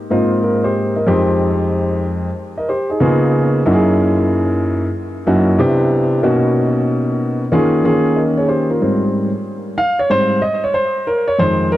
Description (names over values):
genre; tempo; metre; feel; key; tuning
hip hop; 93 BPM; 4/4; swing 66% on 16ths; Ab major; A4 = 444 Hz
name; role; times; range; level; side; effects
dark baby grand piano; solo; 0.1-11.8 s; F2 to F5; -14 LUFS; equal; tape echo
room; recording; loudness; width
light reverb; dry, gritty hardware recording; -14 LUFS; side -14 dB against mid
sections
0.0-8.8 A section; 8.8-11.8 B section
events
grand piano solo 8.8-11.8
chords
0.0 Abmaj9; 1.1 Fm7; 3.0 Db13; 3.7 Gb13; 5.6 Cmaj9; 6.2 Bmaj9; 7.5 Eb9sus4; 8.8 Abmaj7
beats
0.43 | 1.07 1.72 2.37 3.01 | 3.65 4.30 4.95 5.59 | 6.24 6.88 7.53 8.17 | 8.82 9.46 10.11 10.75 | 11.40